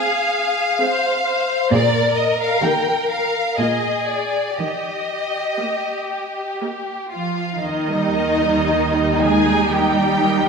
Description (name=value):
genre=classical, slow romantic movement for string orchestra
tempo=57-66 BPM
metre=3/4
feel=rubato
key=Eb major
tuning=A4 = 440 Hz
part: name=warm studio violin section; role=melody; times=0.0-10.5 s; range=D5 to Ab5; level=-21 LUFS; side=left 2 dB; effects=none
part: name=rich chamber violin section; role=second line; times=0.0-10.5 s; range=Eb4 to C5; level=-23 LUFS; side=left 1 dB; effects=none
part: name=rich studio viola section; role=accompaniment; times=0.0-10.5 s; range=Eb3 to Ab4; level=-22 LUFS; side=right 1 dB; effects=none
part: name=warm chamber cello section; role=bass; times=1.7-10.5 s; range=Bb2 to Ab3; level=-23 LUFS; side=right 4 dB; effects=none
part: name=warm chamber double bass section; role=bass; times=7.6-10.5 s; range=Eb2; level=-25 LUFS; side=right 5 dB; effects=none
room=wet scoring stage reverb, RT60 1.7 s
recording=minimal, uncompressed stereo recording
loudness=-17 LUFS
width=side -5 dB against mid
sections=0.0-7.7 A section; 7.7-10.5 B section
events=none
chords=0.0 Fm; 1.7 Bb7; 2.6 Eb; 3.6 Bb; 4.6 Eb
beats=0.81 | 1.73 2.64 3.60 | 4.59 5.61 6.63 | 7.66 8.71 9.72